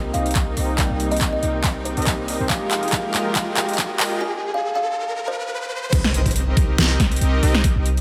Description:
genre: future bass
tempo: 140 BPM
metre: 4/4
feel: swing 55% on 16ths, half-time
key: unclear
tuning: A4 = 440 Hz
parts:
  - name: glassy digital keys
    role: accompaniment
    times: 0.0-5.7 s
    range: G3 to Ab4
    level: -34 LUFS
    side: equal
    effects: chorus, sidechain pumping
  - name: clear symphonic string section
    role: sustained chords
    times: 0.0-4.2 s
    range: C3 to G5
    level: -36 LUFS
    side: equal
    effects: sidechain pumping
  - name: soft supersaw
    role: riff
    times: 0.0-8.0 s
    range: Ab3 to G5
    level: -29 LUFS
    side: equal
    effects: sidechain pumping, low-pass filter
  - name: warm 808-style bass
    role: bass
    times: 0.0-8.0 s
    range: F1 to C2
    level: -25 LUFS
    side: equal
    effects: sidechain pumping
  - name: riser and impact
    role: sound effects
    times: 2.6-7.6 s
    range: none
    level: -33 LUFS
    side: equal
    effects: none
  - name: kalimba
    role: melody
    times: 0.1-5.8 s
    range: C5 to Ab5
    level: -30 LUFS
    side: equal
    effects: sidechain pumping, tape echo
  - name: dubstep drum kit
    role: drums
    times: 0.1-8.0 s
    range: crash cymbal, handclaps, hi-hat, snare drum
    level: -26 LUFS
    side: equal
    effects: overdrive, high-pass filter on snare, small room ambience, high-pass filter on hats, high-pass filter on cymbals
  - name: electronic kick drum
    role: drums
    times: 0.4-7.7 s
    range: none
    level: -24 LUFS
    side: equal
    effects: overdrive, small room ambience
room: moderate lush hall reverb, RT60 1.9 s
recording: high-pass filter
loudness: -21 LUFS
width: mono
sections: 0.0-5.9 A section; 5.9-8.0 B section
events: build-up 0.0-5.9; drum fill 0.0-4.2; filter sweep on supersaw synth 0.0-5.9; riser 2.6-5.9; break 4.2-5.9; drop 5.9-8.0; impact 5.9-7.6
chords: 0.0 Cm7; 2.5 Fm11; 5.7 N.C.; 5.9 Cm7

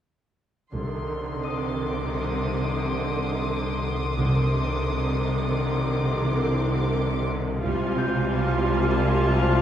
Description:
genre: cinematic, suspense film score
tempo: 87 BPM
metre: 5/4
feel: straight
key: C minor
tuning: A4 = 440 Hz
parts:
  - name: rich symphonic viola section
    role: accompaniment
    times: 0.7-9.6 s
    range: D3 to F4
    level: -27 LUFS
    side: right 1 dB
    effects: none
  - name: rich symphonic double bass section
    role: bass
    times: 0.7-8.3 s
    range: C2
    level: -29 LUFS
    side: equal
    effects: none
  - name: warm symphonic cello section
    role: bass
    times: 0.7-9.6 s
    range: C3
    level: -30 LUFS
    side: right 2 dB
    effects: none
  - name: analog drone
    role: drone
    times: 1.4-9.6 s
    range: C2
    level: -27 LUFS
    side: left 1 dB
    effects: chorus
  - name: rich studio violin section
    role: texture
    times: 0.7-9.6 s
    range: Ab5 to Eb6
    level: -33 LUFS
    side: left 2 dB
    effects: none
  - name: concert harp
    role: texture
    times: 1.4-9.6 s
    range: Eb5 to G6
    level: -34 LUFS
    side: left 4 dB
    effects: none
room: wet scoring stage reverb, RT60 1.5 s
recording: heard from further back in the room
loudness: -22 LUFS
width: side -10 dB against mid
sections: 0.7-9.6 A section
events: none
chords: 0.7 Cmadd9; 7.6 Fmadd9/C

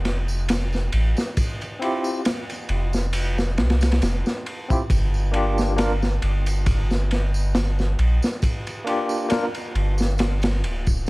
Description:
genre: trip hop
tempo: 68 BPM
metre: 4/4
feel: swing 54% on 16ths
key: G dorian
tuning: A4 = 440 Hz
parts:
  - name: soft dub sub bass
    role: bass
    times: 0.0-11.1 s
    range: D1 to C2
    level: -21 LUFS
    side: equal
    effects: none
  - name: crunchy breakbeat drum kit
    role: drums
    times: 0.1-11.1 s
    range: kick drum, ride cymbal, snare drum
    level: -24 LUFS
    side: equal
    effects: none
  - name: tambourine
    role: percussion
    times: 0.3-11.1 s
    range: none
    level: -39 LUFS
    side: right 2 dB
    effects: none
  - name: barky tine electric piano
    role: accompaniment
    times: 1.8-9.5 s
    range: Bb3 to Bb4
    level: -26 LUFS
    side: left 1 dB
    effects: medium stereo tremolo, low-pass filter, tape echo
room: little or no reverb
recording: vinyl crackle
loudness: -20 LUFS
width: side -23 dB against mid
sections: 0.0-11.1 A section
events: filter sweep on tine electric piano 0.0-11.1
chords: 0.0 F5; 4.9 Gm7

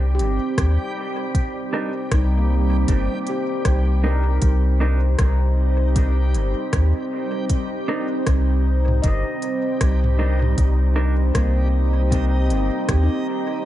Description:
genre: ambient dub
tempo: 78 BPM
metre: 4/4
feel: swing 60% on 16ths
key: C minor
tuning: A4 = 439 Hz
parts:
  - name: deep dark ambient pad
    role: sustained chords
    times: 0.0-13.7 s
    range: C4 to C5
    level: -26 LUFS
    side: right 1 dB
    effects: chorus, built-in reverb
  - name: soft dub sub bass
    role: bass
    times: 0.0-13.1 s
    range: G1 to Eb2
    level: -18 LUFS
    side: equal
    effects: none
  - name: backwards swelling texture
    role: texture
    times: 0.0-13.7 s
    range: G3 to G4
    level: -32 LUFS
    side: equal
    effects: built-in reverb
  - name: handpan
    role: arpeggios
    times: 0.1-13.7 s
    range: Bb3 to Eb5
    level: -31 LUFS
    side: left 3 dB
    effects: dub echo
  - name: organic electronic drum kit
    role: drums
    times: 0.2-13.1 s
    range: hi-hat, rim click, toms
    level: -29 LUFS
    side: equal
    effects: studio ambience, dub echo
  - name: electronic kick drum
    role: drums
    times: 0.6-13.1 s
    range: none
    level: -21 LUFS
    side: equal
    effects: studio ambience
  - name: mellow electric guitar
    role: stabs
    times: 1.7-11.1 s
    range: D4 to Bb4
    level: -32 LUFS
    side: right 2 dB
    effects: dub echo
room: little or no reverb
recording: dark, warm production, nothing above 10.8 kHz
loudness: -18 LUFS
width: side -13 dB against mid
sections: 0.0-13.7 A section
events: none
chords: 0.0 Cm7

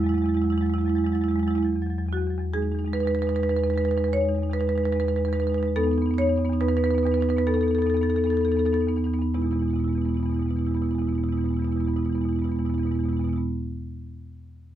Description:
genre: classical, contemporary piece for solo marimba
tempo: 61-75 BPM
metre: 4/4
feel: rubato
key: E major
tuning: A4 = 440 Hz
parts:
  - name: marimba with medium hard mallets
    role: solo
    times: 0.0-13.4 s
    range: E2 to C#5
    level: -22 LUFS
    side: right 1 dB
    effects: none
room: little or no reverb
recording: close, detailed microphones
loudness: -22 LUFS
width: side -11 dB against mid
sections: 0.0-2.5 A section; 2.5-9.3 B section; 9.3-13.1 C section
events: slowing down 0.9-9.3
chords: 0.0 Eadd9; 2.5 Emaj7; 5.8 B7/E; 9.3 E

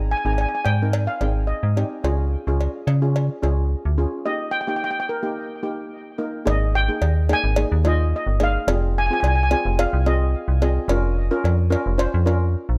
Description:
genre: calypso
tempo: 108 BPM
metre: 4/4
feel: straight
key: Ab major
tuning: A4 = 440 Hz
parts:
  - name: steel pan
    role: melody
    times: 0.0-10.6 s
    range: Bb4 to Bb5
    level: -28 LUFS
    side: equal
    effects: tape echo
  - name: steel pan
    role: accompaniment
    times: 0.0-12.6 s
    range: Bb3 to C5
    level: -29 LUFS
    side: equal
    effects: none
  - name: metallic FM bass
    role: bass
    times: 0.0-12.8 s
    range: F1 to Db3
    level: -22 LUFS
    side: equal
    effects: none
  - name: cowbell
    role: percussion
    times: 0.4-12.4 s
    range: none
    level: -31 LUFS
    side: equal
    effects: none
room: light reverb, studio reverb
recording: dark, warm production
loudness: -21 LUFS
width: mono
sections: 0.0-6.5 A section; 6.5-12.8 B section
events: break 4.3-6.5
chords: 0.0 Ab; 2.0 Db; 4.3 Eb; 6.5 Absus2; 8.7 Fm7; 10.9 Bbm/F

